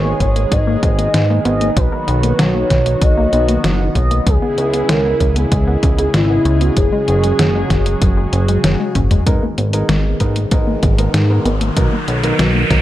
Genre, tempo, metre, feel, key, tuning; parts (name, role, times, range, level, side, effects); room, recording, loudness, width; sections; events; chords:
synthwave; 96 BPM; 4/4; straight; G# minor; A4 = 437 Hz
expressive portamento lead; melody; 0.0-8.6 s; E4 to D#5; -19 LUFS; equal; lush chorus, tape echo
warm analog pad; sustained chords; 0.0-12.8 s; C#3 to A#4; -22 LUFS; equal; lush chorus, sidechain pumping
analog pluck; arpeggios; 0.0-12.8 s; F#3 to C#4; -23 LUFS; left 2 dB; chorus, tape echo
chorused synth bass; bass; 0.0-12.8 s; F#1 to G#2; -17 LUFS; equal
detuned 8-bit digital drum machine; drums; 0.2-12.8 s; hi-hat, snare drum, toms; -20 LUFS; equal
electronic kick drum; drums; 0.2-12.8 s; -17 LUFS; equal; overdrive
dark grand piano; stabs; 9.3-12.8 s; F#3 to A#4; -22 LUFS; right 2 dB; tape echo
riser; sound effects; 9.8-12.8 s; -24 LUFS; left 1 dB
light reverb; dark, warm production; -12 LUFS; side -14 dB against mid
0.0-9.3 A section; 9.3-12.8 B section
drum fill 9.0-9.3; riser 9.8-12.8
0.0 G#madd9; 1.8 Bmaj7; 4.3 C#m7; 6.8 F#sus2; 9.3 G#madd9; 11.8 Bmaj7